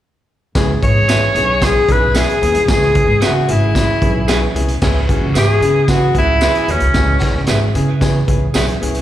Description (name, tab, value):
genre	uptempo 1960s-style soul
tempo	113 BPM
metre	4/4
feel	straight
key	C# minor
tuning	A4 = 440 Hz
part	edgy saxophone section	second line	0.6-6.8 s	B3 to B4	-27 LUFS	right 2 dB	slapback echo
part	clear grand piano	accompaniment	0.6-9.0 s	B3 to B4	-23 LUFS	left 4 dB	slapback echo
part	upright bass	bass	0.6-9.0 s	G#1 to C#3	-17 LUFS	equal	none
part	raw garage drum kit	drums	0.6-9.0 s	crash cymbal, hi-hat, kick drum, snare drum	-18 LUFS	equal	none
part	tambourine	percussion	0.6-8.7 s	none	-32 LUFS	right 3 dB	none
part	clear tenor saxophone	melody	0.8-7.5 s	C#4 to C#5	-16 LUFS	left 2 dB	none
part	semi-hollow electric guitar	stabs	1.1-8.7 s	G#4 to E5	-25 LUFS	right 8 dB	spring reverb, slapback echo, tape echo
room	light reverb, small room ambience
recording	live gig heard through the venue's PA, club reverb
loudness	-12 LUFS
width	side -12 dB against mid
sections	0.6-4.8 A section; 4.8-9.0 B section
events	none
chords	0.6 C#m7